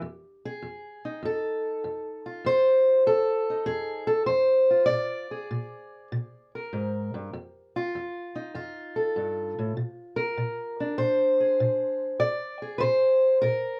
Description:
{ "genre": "acoustic country blues, solo or duo", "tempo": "98 BPM", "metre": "4/4", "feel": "swing 68% on 8ths", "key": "unclear", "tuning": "A4 = 442 Hz", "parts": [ { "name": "fingerpicked steel-string acoustic guitar", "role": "solo", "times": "0.0-13.8 s", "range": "F2 to D5", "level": "-26 LUFS", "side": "equal", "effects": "none" } ], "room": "moderate studio reverb, RT60 0.5 s", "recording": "dark, warm production", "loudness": "-26 LUFS", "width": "mono", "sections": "0.0-13.8 A section", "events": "none", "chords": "0.0 F7; 4.9 Bb7; 7.3 F7; 9.8 Bb7" }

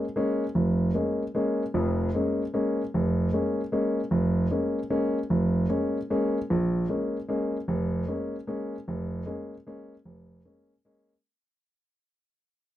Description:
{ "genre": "jazz", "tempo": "152 BPM", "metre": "3/4", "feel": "swing 66% on 8ths", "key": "Bb minor", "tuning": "A4 = 440 Hz", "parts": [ { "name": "warm grand piano", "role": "solo", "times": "0.0-11.1 s", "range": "F1 to Db4", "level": "-25 LUFS", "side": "equal", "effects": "none" } ], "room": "moderate small room reverb, RT60 0.5 s", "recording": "dry, close 1970s-style studio recording", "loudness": "-25 LUFS", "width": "side -13 dB against mid", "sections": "0.0-6.5 A section; 6.5-11.2 B section", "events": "fade-out 6.5-11.2", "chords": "0.0 Bbm7" }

